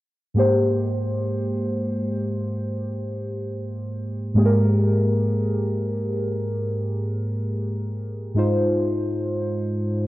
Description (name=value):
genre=R&B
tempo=free time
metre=none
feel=none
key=Ab major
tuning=A4 = 442 Hz
part: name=muted felt-like synth keys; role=accompaniment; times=0.3-10.1 s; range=Ab2 to C5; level=-21 LUFS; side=equal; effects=chorus, phaser
room=light reverb, digital ambience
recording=worn, warbling old tape, cassette tape, warbly pitch drift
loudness=-21 LUFS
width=side -17 dB against mid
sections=0.4-10.1 A section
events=none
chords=0.4 Abmaj7; 8.4 Ab6